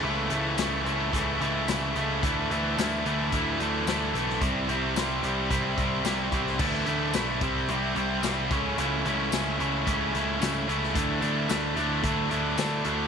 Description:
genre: classic rock.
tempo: 110 BPM.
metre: 4/4.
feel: straight.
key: A mixolydian.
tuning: A4 = 440 Hz.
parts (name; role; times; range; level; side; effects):
distorted electric guitar; riff; 0.0-13.1 s; C3 to E4; -26 LUFS; equal; overdrive.
growling picked electric bass; bass; 0.0-13.1 s; B1 to D2; -31 LUFS; right 1 dB; overdrive.
vintage drum kit; drums; 0.3-13.0 s; crash cymbal, hi-hat, kick drum, snare drum, tambourine; -32 LUFS; left 3 dB; none.
room: light reverb, small room ambience.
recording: 1960s-style stereo.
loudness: -24 LUFS.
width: side -6 dB against mid.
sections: 0.0-13.1 A section.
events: none.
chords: 0.0 A/C#; 2.2 Dsus2; 4.4 C; 6.6 Dsus2; 7.4 C; 8.5 A/C#; 11.0 Dsus2.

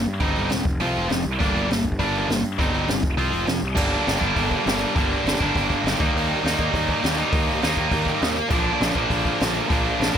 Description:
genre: punk rock.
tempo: 202 BPM.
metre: 4/4.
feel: straight.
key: G minor.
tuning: A4 = 436 Hz.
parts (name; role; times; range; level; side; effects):
tight distorted guitar; riff; 0.0-10.2 s; G2 to F4; -22 LUFS; right 1 dB; distortion.
fuzz picked electric bass; bass; 0.0-10.2 s; E1 to G2; -27 LUFS; equal; overdrive.
jazz brush drum kit; drums; 0.1-10.2 s; crash cymbal, hi-hat, kick drum, snare drum; -25 LUFS; equal; none.
room: light reverb.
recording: none.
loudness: -19 LUFS.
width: side -8 dB against mid.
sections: 0.0-3.8 A section; 3.8-10.2 B section.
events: none.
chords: 0.2 Cm/G; 0.7 F5; 1.4 Gm; 2.6 Cm/G; 3.0 F5; 3.8 Gm; 6.0 Eb; 8.5 Bb.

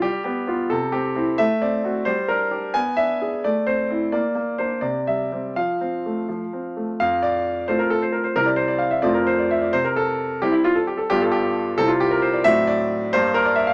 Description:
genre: classical-period piano sonatina.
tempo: 88 BPM (dotted quarters).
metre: 6/8.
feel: straight.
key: F major.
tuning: A4 = 440 Hz.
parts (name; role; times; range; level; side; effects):
bright concert grand piano; solo; 0.0-13.7 s; F2 to G#5; -21 LUFS; equal; none.
room: moderate studio reverb, RT60 0.7 s.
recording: none.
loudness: -22 LUFS.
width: mono.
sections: 0.0-7.0 A section; 7.0-13.7 B section.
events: none.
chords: 0.0 G7; 0.7 C; 1.4 D7/A; 2.1 Gm; 2.8 E7/B; 3.4 Am; 4.1 Bb; 4.8 C; 5.5 F; 8.4 C; 9.1 F; 9.7 C; 11.1 G7; 11.8 C; 12.5 D7/A; 13.1 Gm.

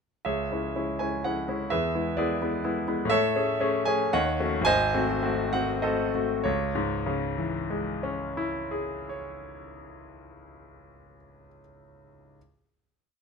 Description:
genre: classical, romantic character piece for solo piano.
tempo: 92-131 BPM.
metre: 3/4.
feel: rubato.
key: C# minor.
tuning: A4 = 440 Hz.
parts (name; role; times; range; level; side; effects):
bright concert grand piano; solo; 0.2-12.4 s; G#1 to G#5; -25 LUFS; equal; none.
room: light reverb.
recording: close, detailed microphones.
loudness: -25 LUFS.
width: side -5 dB against mid.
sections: 0.3-6.5 A section; 6.5-10.1 final chord.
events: slowing down 2.4-6.5.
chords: 0.3 C#m; 1.7 E7; 3.1 Amaj7; 4.1 D#m7b5; 4.7 G#7b9; 6.5 C#m.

